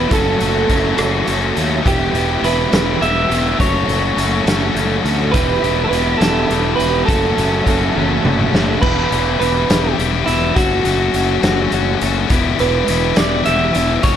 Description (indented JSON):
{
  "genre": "indie rock",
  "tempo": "69 BPM (dotted quarters)",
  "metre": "6/8",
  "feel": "straight",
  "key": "E dorian",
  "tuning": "A4 = 440 Hz",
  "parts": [
    { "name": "electric guitar through a small old amp", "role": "melody", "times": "0.0-14.2 s", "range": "E4 to E5", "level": "-20 LUFS", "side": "right 4 dB", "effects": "slapback echo" },
    { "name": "high-gain distorted guitar", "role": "riff", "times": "0.0-14.2 s", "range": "E3 to G4", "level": "-19 LUFS", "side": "left 10 dB", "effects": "distortion" },
    { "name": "overdriven electric guitar", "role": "riff", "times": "0.0-8.8 s", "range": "E3 to A4", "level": "-22 LUFS", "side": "right 6 dB", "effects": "ensemble chorus" },
    { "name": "fuzz fingered electric bass", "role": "bass", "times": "0.0-14.2 s", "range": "E1 to D#2", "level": "-20 LUFS", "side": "equal", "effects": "overdrive" },
    { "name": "raw garage drum kit", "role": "drums", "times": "0.1-14.2 s", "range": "crash cymbal, hi-hat, kick drum, rim click, snare drum, toms", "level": "-20 LUFS", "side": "equal", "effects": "none" }
  ],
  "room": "small room ambience",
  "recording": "lossy compression artefacts",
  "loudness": "-13 LUFS",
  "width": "side -9 dB against mid",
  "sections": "0.0-8.8 A section; 8.8-14.2 A section",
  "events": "drum fill 8.0-8.8",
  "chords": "0.1 F#m; 1.9 Em; 3.6 F#m; 5.3 Em; 7.1 F#m; 8.8 Em; 10.6 F#m; 12.3 Em"
}